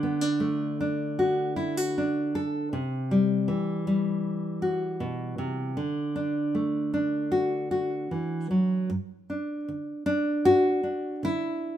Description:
folk, solo fingerstyle acoustic guitar; 78 BPM; 4/4; straight; A4 = 441 Hz
nylon-string guitar; solo; 0.0-11.8 s; G2 to A4; -25 LUFS; equal
light reverb; minimal, uncompressed stereo recording; -25 LUFS; side -11 dB against mid
0.0-8.9 A section; 8.9-11.8 B section
0.0 D; 2.7 C; 5.8 D; 8.9 G5
0.40 1.17 1.94 | 2.71 3.48 4.24 5.00 | 5.77 6.54 7.32 8.11 | 8.90 9.68 10.46 11.23

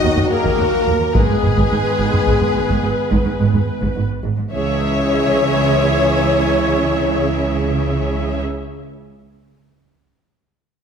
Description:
cinematic, epic orchestral film score; 71 BPM (dotted quarters); 12/8; straight; C# dorian; A4 = 440 Hz
clear studio violin section; melody; 0.0-8.4 s; G#4 to D#5; -24 LUFS; left 5 dB
flute section; second line; 0.0-8.4 s; G#4 to D#5; -25 LUFS; left 1 dB
rich symphonic violin section; second line; 0.0-8.4 s; G#4 to D#5; -30 LUFS; left 4 dB
rich studio viola section; accompaniment; 0.0-8.4 s; F#4 to E5; -24 LUFS; equal
dark trombone section; sustained chords; 0.0-8.4 s; D#3 to B3; -24 LUFS; right 2 dB
warm French horn section; sustained chords; 0.0-8.4 s; G#3 to D#4; -24 LUFS; left 3 dB
rich symphonic double bass section; bass; 0.0-8.4 s; G#1 to D#2; -22 LUFS; right 4 dB
warm symphonic cello section; bass; 0.0-8.4 s; D#2 to C#3; -22 LUFS; right 2 dB
taiko ensemble; drums; 0.2-4.3 s; -21 LUFS; equal
wet scoring stage reverb, RT60 1.7 s; -15 LUFS; side -7 dB against mid
0.0-4.5 A section; 4.5-7.9 B section
0.0 D#m; 1.2 G#m; 4.5 C#m
0.31 | 1.15 2.00 2.84 3.68 | 4.52 5.37 6.21 7.05

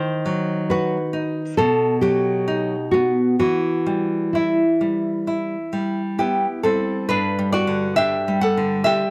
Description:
romantic duo for nylon-string guitar and classical guitar; 63-70 BPM; 4/4; rubato; E minor; A4 = 441 Hz
nylon-string guitar; melody; 0.0-6.6 s; E4 to C5; -24 LUFS; equal
nylon-string guitar; accompaniment; 0.0-9.1 s; G2 to F#5; -22 LUFS; equal
light reverb; close, detailed microphones; -21 LUFS; mono
0.0-7.1 A section; 7.1-9.1 B section
0.0 B/D#; 1.6 B; 3.4 Em; 7.1 G5
0.71 1.59 2.48 | 3.39 4.33 5.28 6.18 | 7.09 7.97 8.85

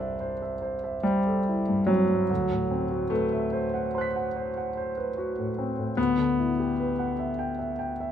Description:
classical, impressionist solo piano; 49 BPM (dotted quarters); 9/8; rubato; A4 = 441 Hz
clear grand piano; solo; 0.0-8.1 s; C2 to B6; -25 LUFS; equal
wet stone room reverb, RT60 1.1 s; -25 LUFS; side -9 dB against mid
0.0-8.1 A section
0.0 C69; 2.3 D13; 6.0 Em9/D
1.04 | 2.30 3.53 4.76 | 5.98 7.19

